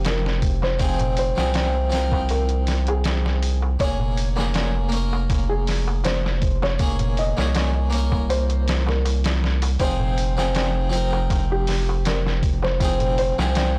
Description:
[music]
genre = trip hop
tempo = 80 BPM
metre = 4/4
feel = straight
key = F minor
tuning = A4 = 440 Hz
[part]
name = harpsichord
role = accompaniment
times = 0.0-13.8 s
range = F3 to Bb4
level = -30 LUFS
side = equal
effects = tremolo, tape echo
[part]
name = round analog bass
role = bass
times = 0.0-13.8 s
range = F1 to C2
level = -25 LUFS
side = equal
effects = none
[part]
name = trip hop sampler-style drum kit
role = drums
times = 0.0-13.7 s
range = hi-hat, kick drum, snare drum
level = -28 LUFS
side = equal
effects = none
[part]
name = felt-muted upright piano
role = melody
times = 0.1-13.7 s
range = G4 to Eb5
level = -31 LUFS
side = equal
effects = tape echo
[part]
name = darbuka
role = percussion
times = 0.1-13.8 s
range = none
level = -36 LUFS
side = equal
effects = none
[sound]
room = light reverb, small room ambience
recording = blown-out, overdriven recording, overdrive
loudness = -22 LUFS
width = mono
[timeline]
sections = 0.0-13.8 A section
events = none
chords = 0.0 Fm7; 3.8 Bbm7/F; 9.8 Fm7

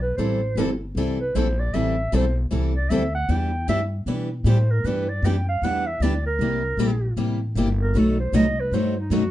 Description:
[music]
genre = acoustic string swing (jazz manouche)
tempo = 155 BPM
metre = 4/4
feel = swing 61% on 8ths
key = E minor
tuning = A4 = 440 Hz
[part]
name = breathy clarinet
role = melody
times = 0.0-9.3 s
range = D#4 to G5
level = -27 LUFS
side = right 2 dB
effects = none
[part]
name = upright bass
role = bass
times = 0.0-9.3 s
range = G1 to B2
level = -23 LUFS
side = equal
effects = none
[part]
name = picked steel-string acoustic guitar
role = accompaniment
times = 0.2-9.2 s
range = B2 to A4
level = -25 LUFS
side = left 4 dB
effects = none
[part]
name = picked steel-string acoustic guitar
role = accompaniment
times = 0.2-9.2 s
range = B2 to B4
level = -29 LUFS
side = right 6 dB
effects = none
[sound]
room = moderate small room reverb, RT60 0.5 s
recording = nothing above 11.0 kHz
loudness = -20 LUFS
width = side -14 dB against mid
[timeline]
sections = 0.0-9.3 A section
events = clarinet solo 0.0-9.3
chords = 0.2 Am7; 3.3 Em7; 6.4 C7; 7.9 B7b9

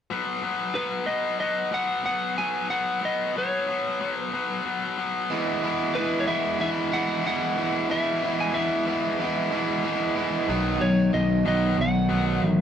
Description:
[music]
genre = rock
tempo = 92 BPM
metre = 4/4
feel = straight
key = unclear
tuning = A4 = 440 Hz
[part]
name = tight distorted guitar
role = riff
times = 0.1-12.6 s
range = E2 to B3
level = -26 LUFS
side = left 4 dB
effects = distortion
[part]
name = lightly driven lead guitar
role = melody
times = 0.8-12.6 s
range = B4 to G#5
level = -28 LUFS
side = equal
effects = none
[part]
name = overdriven electric guitar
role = riff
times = 5.3-12.6 s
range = B2 to E4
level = -26 LUFS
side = right 6 dB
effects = none
[part]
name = overdriven picked electric bass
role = bass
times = 10.5-12.6 s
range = A1 to B1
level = -26 LUFS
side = equal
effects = none
[sound]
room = moderate studio reverb, RT60 0.6 s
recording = band playing live in one room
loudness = -23 LUFS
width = side -8 dB against mid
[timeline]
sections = 0.1-10.5 A section; 10.5-12.6 B section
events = none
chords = 0.1 B5; 5.3 E; 10.5 B

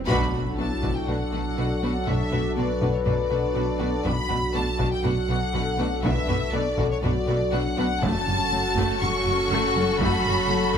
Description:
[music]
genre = cinematic, hybrid orchestral and electronic film score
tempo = 121 BPM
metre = 4/4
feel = straight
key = B minor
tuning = A4 = 440 Hz
[part]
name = chorused pulse-width pad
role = sustained chords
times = 0.0-10.8 s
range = F#3 to A4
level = -30 LUFS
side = equal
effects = none
[part]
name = pure sine sub bass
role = bass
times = 0.0-10.8 s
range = F#1 to B1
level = -33 LUFS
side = equal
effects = none
[part]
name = swell and impact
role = sound effects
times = 0.0-2.1 s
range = none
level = -36 LUFS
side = right 1 dB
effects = none
[part]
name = warm symphonic violin section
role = melody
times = 0.1-10.8 s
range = C#5 to C#6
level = -28 LUFS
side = left 2 dB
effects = none
[part]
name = warm symphonic violin section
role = second line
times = 0.1-10.8 s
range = F#4 to B4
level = -32 LUFS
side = left 1 dB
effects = none
[part]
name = rich studio viola section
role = accompaniment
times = 0.1-10.8 s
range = G3 to D4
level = -33 LUFS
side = right 1 dB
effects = none
[part]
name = dark French horn section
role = sustained chords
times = 0.1-10.8 s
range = D4 to B4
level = -30 LUFS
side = left 3 dB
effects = none
[part]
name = round analog bass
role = riff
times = 0.1-10.8 s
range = F#2 to B3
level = -31 LUFS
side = left 3 dB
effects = none
[part]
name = rich symphonic cello section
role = bass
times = 0.1-10.8 s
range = F#2 to B2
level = -33 LUFS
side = right 3 dB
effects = none
[part]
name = warm symphonic double bass section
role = bass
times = 0.1-10.8 s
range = F#1 to B1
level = -33 LUFS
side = right 3 dB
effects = none
[part]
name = taiko ensemble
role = drums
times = 0.1-10.8 s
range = none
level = -30 LUFS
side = equal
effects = none
[sound]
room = light reverb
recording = close, detailed microphones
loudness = -22 LUFS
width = side -8 dB against mid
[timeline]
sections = 0.1-10.8 A section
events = band accent 0.1-0.6; impact 0.1-2.1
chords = 0.1 Bm7; 8.0 F#m

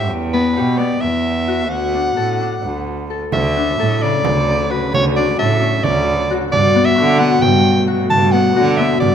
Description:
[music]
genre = contemporary instrumental, chamber music in an uneven meter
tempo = 263 BPM (eighths)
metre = 7/8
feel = straight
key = unclear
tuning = A4 = 439 Hz
[part]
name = bright soprano saxophone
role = melody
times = 0.0-9.1 s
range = B4 to A5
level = -18 LUFS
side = right 1 dB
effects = none
[part]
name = Celtic harp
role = arpeggios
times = 0.0-9.1 s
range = C#3 to A4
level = -18 LUFS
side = left 6 dB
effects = none
[part]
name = bright cello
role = bass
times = 0.0-9.1 s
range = D2 to D3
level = -19 LUFS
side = right 4 dB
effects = none
[part]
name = muted studio string section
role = sustained chords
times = 3.3-9.1 s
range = B2 to A3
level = -26 LUFS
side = right 2 dB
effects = none
[part]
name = frame drum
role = percussion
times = 3.3-9.1 s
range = none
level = -24 LUFS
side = right 4 dB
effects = none
[sound]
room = wet scoring stage reverb, RT60 1.7 s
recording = none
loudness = -13 LUFS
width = side -8 dB against mid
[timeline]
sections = 0.0-3.3 A section; 3.3-9.1 B section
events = none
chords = 0.1 Em; 1.7 D; 6.5 Gmaj9

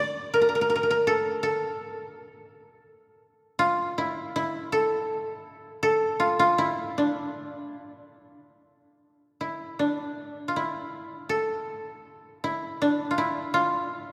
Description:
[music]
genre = japanese traditional, Japanese chamber music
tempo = 72-83 BPM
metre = 4/4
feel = rubato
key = D hirajoshi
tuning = A4 = 440 Hz
[part]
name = koto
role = solo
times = 0.0-14.1 s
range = D4 to D5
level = -27 LUFS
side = equal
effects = none
[sound]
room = wet church reverb, RT60 3.2 s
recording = recorded in a church or concert hall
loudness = -27 LUFS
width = mono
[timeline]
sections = 0.0-9.0 A section; 9.0-14.1 B section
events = none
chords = none

